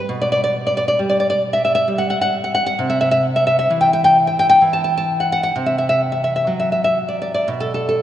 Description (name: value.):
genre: romantic piece for solo classical guitar.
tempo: 54-70 BPM.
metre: 3/4.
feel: rubato.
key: unclear.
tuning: A4 = 440 Hz.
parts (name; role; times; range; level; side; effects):
nylon-string guitar; solo; 0.0-8.0 s; B2 to A5; -15 LUFS; equal; none.
room: wet cathedral reverb, RT60 5.2 s.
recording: recorded in a church or concert hall, nothing above 10.8 kHz.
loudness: -15 LUFS.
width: side -11 dB against mid.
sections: 0.0-8.0 A section.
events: none.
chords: 0.1 G/B; 2.8 C6; 5.6 Cadd9; 7.5 N.C..